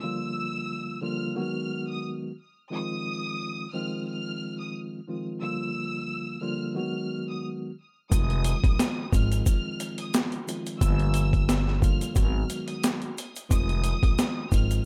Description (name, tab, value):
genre	hip hop, boom-bap hip-hop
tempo	89 BPM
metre	4/4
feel	swing 55% on 16ths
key	F dorian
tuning	A4 = 439 Hz
part	bright studio violin section	melody	0.0-14.8 s	Eb6 to F6	-38 LUFS	equal	high-pass filter, low-pass filter
part	mellow tine electric piano	accompaniment	0.0-14.9 s	D3 to Gb4	-35 LUFS	equal	high-pass filter, low-pass filter
part	upright bass	bass	8.1-14.8 s	F1 to Bb1	-29 LUFS	equal	none
part	boom bap sampler-style drum kit	drums	8.1-14.8 s	hi-hat, kick drum, snare drum	-27 LUFS	equal	none
part	egg shaker	percussion	8.1-14.8 s	none	-42 LUFS	equal	none
room	little or no reverb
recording	none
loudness	-28 LUFS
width	mono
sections	0.0-14.9 A section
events	none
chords	0.0 Gm7; 1.4 Abm7; 2.7 Fm7; 5.4 Gm7; 6.8 Abm7; 8.1 Fm7; 10.8 Gm7; 12.2 Abm7; 13.5 Fm7